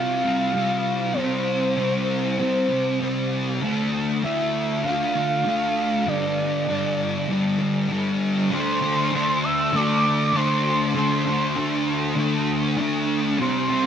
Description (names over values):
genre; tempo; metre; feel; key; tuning
rock; 98 BPM; 4/4; straight; D minor; A4 = 441 Hz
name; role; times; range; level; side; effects
soft octave-layered synth lead; melody; 0.0-13.9 s; C5 to E6; -25 LUFS; right 1 dB; chorus, analog delay
thick fuzz guitar; riff; 0.0-13.9 s; G2 to D4; -22 LUFS; equal; distortion, ensemble chorus
room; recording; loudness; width
moderate plate reverb, RT60 2.6 s; none; -20 LUFS; side -8 dB against mid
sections
0.0-8.5 A section; 8.5-13.9 B section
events
none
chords
0.0 Csus4; 3.6 Dm; 6.1 G5; 8.5 D5